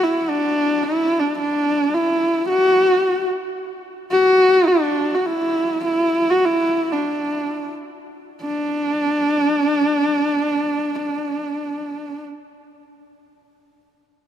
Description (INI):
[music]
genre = mongolian traditional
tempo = free time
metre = none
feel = none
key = D gong mode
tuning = A4 = 441 Hz
[part]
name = warm horsehead fiddle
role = solo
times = 0.0-12.2 s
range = D4 to F#4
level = -17 LUFS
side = equal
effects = none
[sound]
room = moderate huge ambient reverb, RT60 4.4 s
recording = none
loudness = -17 LUFS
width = side -10 dB against mid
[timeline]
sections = 0.0-8.4 A section; 8.4-14.2 B section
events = slowing down 3.6-8.4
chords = none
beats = free time